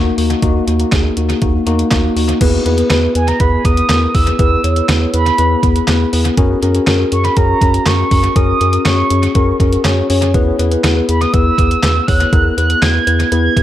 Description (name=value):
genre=synth-pop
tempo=121 BPM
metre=4/4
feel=straight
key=unclear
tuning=A4 = 436 Hz
part: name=mellow tine electric piano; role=accompaniment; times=0.0-13.6 s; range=A#3 to C#5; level=-16 LUFS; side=left 2 dB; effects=lush chorus, tape echo
part: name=round analog bass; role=bass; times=0.0-13.6 s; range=D#2 to F#2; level=-16 LUFS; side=equal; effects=none
part: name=detuned 8-bit digital drum machine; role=drums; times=0.2-13.6 s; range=crash cymbal, handclaps, hi-hat, kick drum, snare drum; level=-16 LUFS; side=equal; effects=overdrive, tape echo
part: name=mellow horn-like synth lead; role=melody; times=3.2-13.6 s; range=G#5 to G#6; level=-17 LUFS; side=right 3 dB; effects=chorus, tape echo
room=moderate spring reverb, RT60 1.7 s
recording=echo-heavy mix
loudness=-11 LUFS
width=side -12 dB against mid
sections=0.0-2.4 A section; 2.4-13.6 B section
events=none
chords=0.0 D#m; 2.4 E; 6.4 F#add9; 10.3 E